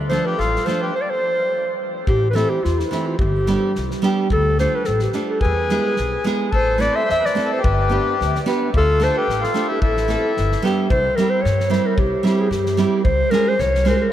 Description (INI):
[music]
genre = balkan folk, Balkan wedding band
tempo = 109 BPM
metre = 2/4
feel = swing 54% on 16ths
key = A minor, C phrygian dominant from 10.9 s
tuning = A4 = 435 Hz
[part]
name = upright bass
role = bass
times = 0.0-13.9 s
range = G1 to G2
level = -22 LUFS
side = equal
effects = none
[part]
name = dark clarinet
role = melody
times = 0.1-14.1 s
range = E4 to E5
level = -20 LUFS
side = equal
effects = tape echo
[part]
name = accordion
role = second line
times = 0.1-0.9, 5.4-10.6, 14.1 s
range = E4 to C5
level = -26 LUFS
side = left 4 dB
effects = none
[part]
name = nylon-string guitar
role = accompaniment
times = 0.1-14.1 s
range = E3 to B4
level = -22 LUFS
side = right 3 dB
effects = none
[part]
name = natural country drum kit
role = percussion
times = 0.1-13.9 s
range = kick drum, snare drum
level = -25 LUFS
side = equal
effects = none
[sound]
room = moderate huge ambient reverb, RT60 8.6 s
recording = in a vast, echoing space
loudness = -16 LUFS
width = side -11 dB against mid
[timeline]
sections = 0.0-2.1 A section; 2.1-10.9 A section; 10.9-14.1 B section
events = speeding up 0.0-14.1; stop 0.9-2.1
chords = 0.0 Dm; 0.9 N.C.; 2.1 Am; 3.2 G; 4.3 Dm; 5.4 E; 6.5 Am; 7.6 G; 8.7 Dm; 9.8 Am; 10.4 G; 10.9 C; 13.1 Db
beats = 0.39 | 0.95 1.51 | 2.08 2.64 | 3.20 3.76 | 4.32 4.87 | 5.43 5.98 | 6.54 7.09 | 7.64 8.19 | 8.74 9.28 | 9.83 10.37 | 10.91 11.45 | 11.98 12.52 | 13.05 13.58 | 14.11